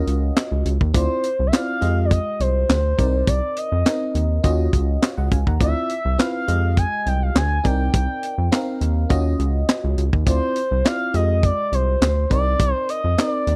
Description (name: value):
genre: early-eighties boogie funk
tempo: 103 BPM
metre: 4/4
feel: straight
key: unclear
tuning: A4 = 441 Hz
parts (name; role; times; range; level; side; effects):
- expressive portamento lead; melody; 0.0-13.6 s; Bb4 to Ab5; -26 LUFS; equal; chorus
- FM electric piano; accompaniment; 0.0-13.6 s; Ab3 to Bb5; -29 LUFS; equal; chorus
- rubbery square bass; bass; 0.0-13.6 s; C2 to F2; -22 LUFS; equal; none
- tight funk drum kit; drums; 0.1-13.6 s; handclaps, hi-hat, kick drum, snare drum; -22 LUFS; equal; none
room: small room ambience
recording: dry, close 1970s-style studio recording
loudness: -20 LUFS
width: mono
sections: 0.0-13.6 A section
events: none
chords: 0.0 Ebm9; 0.9 Dm9; 1.8 Fm9; 3.0 Cm9; 4.4 Ebm9; 5.6 Dm9; 6.5 Fm9; 7.6 Cm9; 9.1 Ebm9; 10.3 Dm9; 11.1 Fm9; 12.3 Cm9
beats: 0.36 | 0.95 1.53 2.11 2.69 | 3.28 3.86 4.44 5.02 | 5.61 6.19 6.77 7.35 | 7.94 8.52 9.10 9.68 | 10.27 10.85 11.43 12.01 | 12.60 13.18